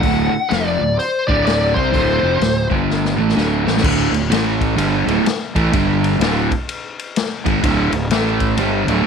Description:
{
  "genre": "blues rock power trio and southern rock",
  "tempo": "127 BPM",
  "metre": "4/4",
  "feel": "swing 63% on 8ths",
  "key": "unclear",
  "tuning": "A4 = 440 Hz",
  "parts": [
    { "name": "smooth overdriven lead guitar", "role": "melody", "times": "0.0-2.7 s", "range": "C5 to F#5", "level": "-18 LUFS", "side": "left 3 dB", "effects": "slapback echo" },
    { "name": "overdriven semi-hollow guitar", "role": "riff", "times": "0.0-9.1 s", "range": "D2 to C4", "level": "-18 LUFS", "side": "right 2 dB", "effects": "none" },
    { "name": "fuzz fingered electric bass", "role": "bass", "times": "0.0-9.0 s", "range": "D1 to C2", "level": "-21 LUFS", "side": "right 1 dB", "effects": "overdrive" },
    { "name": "vintage drum kit", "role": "drums", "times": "0.0-9.0 s", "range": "crash cymbal, hi-hat, kick drum, ride cymbal, snare drum", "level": "-21 LUFS", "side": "left 3 dB", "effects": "none" }
  ],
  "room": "light reverb, small room ambience",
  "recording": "1960s-style stereo",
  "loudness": "-15 LUFS",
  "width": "side -6 dB against mid",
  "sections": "0.0-3.8 A section; 3.8-9.1 B section",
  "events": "drum fill 2.9-3.8",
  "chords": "0.0 D5; 2.7 G5; 3.1 D5; 4.3 A5; 4.8 D5; 5.7 G5; 6.2 D5; 8.1 A5",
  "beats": "| 0.04 0.51 0.99 1.47 | 1.94 2.41 2.89 3.36 | 3.84 4.31 4.79 5.26 | 5.73 6.21 6.68 7.15 | 7.63 8.10 8.57 9.05"
}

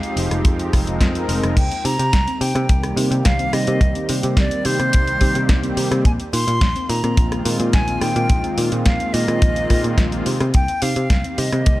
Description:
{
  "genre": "nu-disco, nu disco",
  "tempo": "107 BPM",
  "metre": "4/4",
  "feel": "straight",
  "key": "C minor",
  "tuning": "A4 = 440 Hz",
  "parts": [
    { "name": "bright silver concert flute", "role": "melody", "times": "0.0-11.8 s", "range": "C5 to C6", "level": "-24 LUFS", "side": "equal", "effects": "tape echo" },
    { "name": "warm analog pad", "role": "accompaniment", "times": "0.0-11.8 s", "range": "Eb3 to Bb4", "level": "-24 LUFS", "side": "equal", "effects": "chorus" },
    { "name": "house drum kit", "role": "drums", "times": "0.0-11.8 s", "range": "crash cymbal, hi-hat, rim click, snare drum", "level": "-26 LUFS", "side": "equal", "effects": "studio reverb" },
    { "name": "picked electric bass", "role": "bass", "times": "0.2-11.8 s", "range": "F1 to C3", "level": "-21 LUFS", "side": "equal", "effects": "none" },
    { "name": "kick drum", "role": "drums", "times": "0.5-11.8 s", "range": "none", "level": "-17 LUFS", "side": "equal", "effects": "studio reverb" },
    { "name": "soft round pluck", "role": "arpeggios", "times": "1.6-11.7 s", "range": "Bb3 to C5", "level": "-30 LUFS", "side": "right 1 dB", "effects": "none" }
  ],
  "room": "small room ambience",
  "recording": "none",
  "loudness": "-16 LUFS",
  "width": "side -17 dB against mid",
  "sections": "0.0-11.8 A section",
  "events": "none",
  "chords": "0.0 Fm9; 1.6 Cm7; 6.1 Bb9sus4; 10.3 Cm7",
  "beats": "0.45 1.01 | 1.57 2.13 2.69 3.25 | 3.81 4.37 4.93 5.49 | 6.05 6.62 7.18 7.74 | 8.30 8.86 9.42 9.98 | 10.54 11.10 11.66"
}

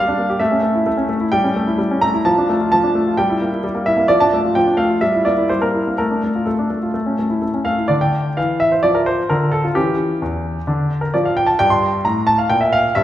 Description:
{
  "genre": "classical-period piano sonatina",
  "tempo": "130 BPM",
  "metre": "4/4",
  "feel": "rubato",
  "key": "D minor",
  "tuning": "A4 = 440 Hz",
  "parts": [
    { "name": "clear grand piano", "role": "solo", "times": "0.0-13.0 s", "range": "E2 to C6", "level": "-15 LUFS", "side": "equal", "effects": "none" }
  ],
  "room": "wet recital hall reverb, RT60 1.7 s",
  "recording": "heard from further back in the room",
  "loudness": "-15 LUFS",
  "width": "side -12 dB against mid",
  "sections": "0.0-7.9 A section; 7.9-13.0 A section",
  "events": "none",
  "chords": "0.4 A; 1.3 A7/G; 2.2 Dm/F; 3.2 Edim/G; 4.1 Dm/F; 5.0 Edim/G; 6.0 Dm/A; 6.9 A; 7.9 Dm; 9.8 C#dim/E; 10.7 Dm; 11.6 Gm",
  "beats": "| 0.41 0.86 1.32 1.79 | 2.25 2.71 3.18 3.64 | 4.10 4.56 5.02 5.49 | 5.97 6.46 6.94 7.42 | 7.90 8.37 8.84 9.30 | 9.76 10.21 10.67 11.13 | 11.59 12.04 12.49 12.95"
}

